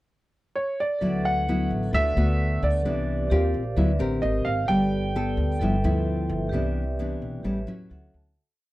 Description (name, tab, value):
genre	bossa nova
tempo	130 BPM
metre	4/4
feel	straight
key	D major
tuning	A4 = 437 Hz
part	clear grand piano	melody	0.6-7.9 s	C#5 to G5	-28 LUFS	right 2 dB	none
part	nylon-string guitar	accompaniment	1.0-8.3 s	G2 to Bb4	-26 LUFS	left 1 dB	none
part	vibraphone with medium hard mallets	accompaniment	1.0-8.4 s	F#4 to A5	-33 LUFS	right 2 dB	none
part	upright bass	bass	1.0-8.4 s	G1 to E2	-26 LUFS	equal	none
room	little or no reverb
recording	dry, close 1970s-style studio recording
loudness	-22 LUFS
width	side -17 dB against mid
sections	0.0-1.0 pickup bar; 1.0-8.4 A section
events	fade-out 6.5-8.4; vibraphone fill 7.7-8.4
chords	0.0 N.C.; 1.0 D69; 2.9 Cmaj9; 3.3 Eb69; 3.8 D69; 4.2 G#maj9; 4.7 Gadd9; 5.6 G13; 6.5 Cmaj9; 7.4 A9; 7.9 Dmaj9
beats	0.09 0.55 | 1.01 1.47 1.93 2.39 | 2.85 3.31 3.77 4.23 | 4.69 5.15 5.61 6.07 | 6.53 6.99 7.45 7.91